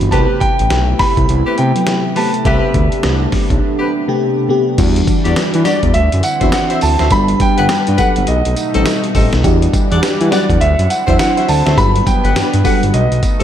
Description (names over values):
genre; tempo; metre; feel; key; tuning
R&B, new jack swing; 103 BPM; 4/4; swing 61% on 16ths; unclear; A4 = 441 Hz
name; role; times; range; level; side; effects
warm concert grand piano; melody; 0.0-13.4 s; D5 to B5; -18 LUFS; right 1 dB; none
FM electric piano with soft pad layer; accompaniment; 0.0-13.4 s; B2 to C5; -18 LUFS; left 1 dB; chorus, phaser
smooth synth bass; bass; 0.0-13.4 s; G1 to E3; -15 LUFS; equal; none
dusty soul sampler-style drum kit; drums; 0.0-13.4 s; crash cymbal, hi-hat, kick drum, snare drum, tambourine; -17 LUFS; equal; none
chorused pulse-width pad; sustained chords; 0.1-13.4 s; B2 to F#5; -21 LUFS; equal; none
warm horn section; stabs; 0.1-13.4 s; C4 to F#5; -23 LUFS; left 4 dB; none
room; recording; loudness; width
moderate church reverb, RT60 2.8 s; dreamy mix soaked in reverb; -11 LUFS; side -10 dB against mid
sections
0.0-4.8 A section; 4.8-13.4 B section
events
none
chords
0.1 Am9; 4.8 Em9; 5.9 D9; 7.1 Gmaj7; 8.3 B7b9b13; 9.4 Em9; 10.6 D9; 11.8 Gmaj7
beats
| 0.12 0.71 1.29 1.87 | 2.45 3.04 3.62 4.20 | 4.78 5.37 5.95 6.53 | 7.11 7.70 8.28 8.86 | 9.44 10.03 10.61 11.19 | 11.77 12.36 12.94